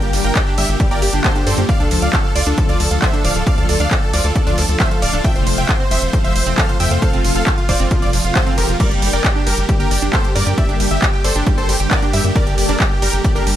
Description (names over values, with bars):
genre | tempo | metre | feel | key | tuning
uplifting trance | 135 BPM | 4/4 | straight | G dorian | A4 = 440 Hz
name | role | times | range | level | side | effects
supersaw chords | melody | 0.0-13.5 s | F4 to G5 | -21 LUFS | equal | sidechain pumping, ping-pong delay
analog string pad | sustained chords | 0.0-13.4 s | C3 to A4 | -25 LUFS | left 2 dB | ensemble chorus, sidechain pumping
tight sequencer bass | bass | 0.0-13.5 s | D1 to G2 | -20 LUFS | equal | sidechain pumping
techno drum kit | drums | 0.0-13.6 s | crash cymbal, handclaps, hi-hat, ride cymbal | -22 LUFS | right 1 dB | sidechain pumping on hats, sidechain pumping on cymbals
analog pluck | arpeggios | 0.1-13.5 s | F3 to G5 | -25 LUFS | right 3 dB | chorus, cassette tape, sidechain pumping, ping-pong delay
electronic kick drum | drums | 0.4-13.3 s | none | -17 LUFS | equal | none
room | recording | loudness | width
digital ambience | none | -13 LUFS | side -12 dB against mid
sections
0.0-13.6 A section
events
none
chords
0.0 Gm; 1.7 Dm; 5.2 F; 8.8 Gm